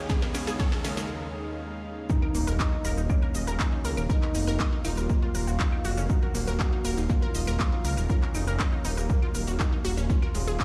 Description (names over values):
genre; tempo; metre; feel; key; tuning
melodic techno; 120 BPM; 4/4; straight; Eb minor; A4 = 440 Hz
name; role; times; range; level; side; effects
expressive portamento lead; melody; 0.0-10.6 s; Ab3 to Gb4; -39 LUFS; equal; lush chorus, sidechain pumping, tape echo
lush unison pad; sustained chords; 0.0-10.6 s; Eb2 to F5; -40 LUFS; equal; chorus, sidechain pumping
unison pluck; arpeggios; 0.0-10.6 s; Ab3 to Eb5; -38 LUFS; equal; phaser, sidechain pumping, tape echo
overtone-sweeping drone; drone; 0.0-1.1 s; Eb3; -50 LUFS; equal; none
riser and impact; sound effects; 0.0-4.1 s; none; -40 LUFS; equal; none
warbly tape-like pad; texture; 0.0-1.1 s; Eb4 to F5; -49 LUFS; equal; none
electronic kick drum; drums; 0.1-10.6 s; none; -29 LUFS; equal; none
techno drum kit; drums; 0.1-10.6 s; claves, handclaps, hi-hat, shaker, snare drum; -38 LUFS; equal; high-pass filter on snare, high-pass filter on perc, high-pass filter on hats, high-pass filter on room
dark detuned saw bass; bass; 2.3-10.6 s; Eb1 to Db2; -31 LUFS; equal; sidechain pumping
room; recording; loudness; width
little or no reverb; played on a big sound system in a bare room, stone room reverb; -27 LUFS; mono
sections
0.0-2.1 A section; 2.1-10.6 B section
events
build-up 0.0-2.1; drum fill 0.0-1.1; riser 0.0-1.1; break 1.1-2.1; drop 2.1-10.6; impact 2.1-4.1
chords
0.0 Dbadd9/Eb; 2.1 Ebm; 10.1 Dbadd9